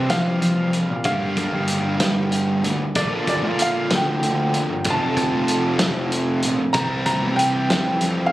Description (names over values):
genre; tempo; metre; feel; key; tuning
indie rock; 63 BPM (dotted quarters); 6/8; straight; unclear; A4 = 440 Hz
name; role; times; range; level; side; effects
clear upright piano; melody; 0.0-8.3 s; D5 to Bb5; -25 LUFS; equal; slapback echo
fuzz guitar; riff; 0.0-8.3 s; F2 to G4; -23 LUFS; equal; distortion
fuzz picked electric bass; bass; 0.0-8.3 s; F1 to F3; -23 LUFS; equal; overdrive
loose indie drum kit; drums; 0.1-8.2 s; hi-hat, kick drum, snare drum; -24 LUFS; equal; none
room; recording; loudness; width
little or no reverb; recorded on a phone in the room, club reverb; -18 LUFS; side -16 dB against mid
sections
0.0-8.3 A section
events
none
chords
0.0 C7sus4; 1.1 Gm7; 3.0 Bb; 4.8 F; 6.7 Csus4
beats
0.11 | 1.06 2.01 | 2.95 3.90 | 4.85 5.80 | 6.74 7.69